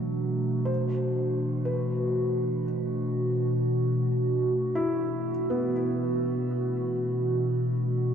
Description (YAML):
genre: ambient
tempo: free time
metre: none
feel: none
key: unclear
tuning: A4 = 441 Hz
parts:
  - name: warbly tape-like pad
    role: sustained chords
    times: 0.0-8.1 s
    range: B2 to F#4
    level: -26 LUFS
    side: equal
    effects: chorus, built-in reverb
  - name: felt-muted upright piano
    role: arpeggios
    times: 0.0-8.1 s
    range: F#3 to C5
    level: -33 LUFS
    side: equal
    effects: tape echo, shimmer reverb
room: wet cathedral reverb, RT60 5.5 s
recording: dark, warm production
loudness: -25 LUFS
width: side -8 dB against mid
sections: 0.0-8.1 A section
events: none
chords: 0.0 D; 0.7 Bm7